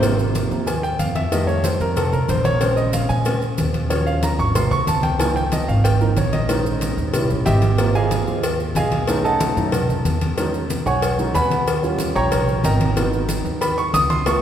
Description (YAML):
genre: Afro-Cuban jazz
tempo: 186 BPM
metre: 4/4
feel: straight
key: Ab major, E major from 10.4 s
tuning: A4 = 440 Hz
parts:
  - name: warm concert grand piano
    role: accompaniment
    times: 0.0-14.4 s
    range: C3 to D#6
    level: -21 LUFS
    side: right 1 dB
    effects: none
  - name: upright bass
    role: bass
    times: 0.0-14.4 s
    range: G#1 to Bb2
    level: -22 LUFS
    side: right 1 dB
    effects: none
  - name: congas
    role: percussion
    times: 0.0-14.4 s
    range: none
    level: -25 LUFS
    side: left 1 dB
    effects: none
  - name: cowbell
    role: percussion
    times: 0.0-14.4 s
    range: none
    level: -26 LUFS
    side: left 2 dB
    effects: none
  - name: maracas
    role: percussion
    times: 0.0-14.4 s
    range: none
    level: -35 LUFS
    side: right 3 dB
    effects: none
room: wet church reverb, RT60 2.8 s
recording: recorded in a church or concert hall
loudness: -17 LUFS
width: side -10 dB against mid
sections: 0.0-10.4 A section; 10.4-14.4 A section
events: grand piano solo 0.0-14.4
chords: 0.0 Ab6; 1.3 F7; 2.6 Bbm9; 3.9 Ebm9; 4.6 Ab7b9; 5.2 Db69; 6.5 Bbm11; 7.1 Eb7b9; 7.8 Ab6; 9.1 B7; 10.4 Emaj13; 11.7 D#7; 13.0 G#m7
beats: | 0.03 0.35 0.68 1.00 | 1.32 1.65 1.97 2.29 | 2.62 2.94 3.26 3.59 | 3.91 4.23 4.56 4.88 | 5.20 5.53 5.85 6.17 | 6.50 6.82 7.14 7.47 | 7.79 8.11 8.44 8.76 | 9.08 9.41 9.73 10.05 | 10.38 10.70 11.03 11.35 | 11.67 12.00 12.32 12.65 | 12.97 13.29 13.62 13.94 | 14.27